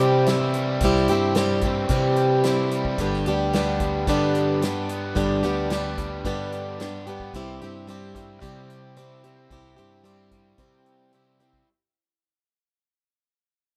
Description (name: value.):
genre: folk rock and heartland rock.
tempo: 111 BPM.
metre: 4/4.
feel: straight.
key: unclear.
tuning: A4 = 440 Hz.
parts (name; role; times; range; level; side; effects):
picked plugged-in swing-style acoustic guitar; accompaniment; 0.0-11.7 s; G2 to G4; -26 LUFS; equal; none.
raw garage guitar; riff; 0.0-11.7 s; G2 to G4; -34 LUFS; equal; overdrive.
fingered electric bass; bass; 0.0-11.6 s; G1 to C3; -31 LUFS; equal; none.
natural country drum kit; drums; 0.0-11.7 s; hi-hat, kick drum, snare drum; -32 LUFS; equal; none.
room: small room ambience.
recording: rough home demo mix.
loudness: -23 LUFS.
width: mono.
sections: 0.0-11.7 A section.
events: fade-out 0.0-11.7.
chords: 0.0 C; 3.0 G; 7.3 C.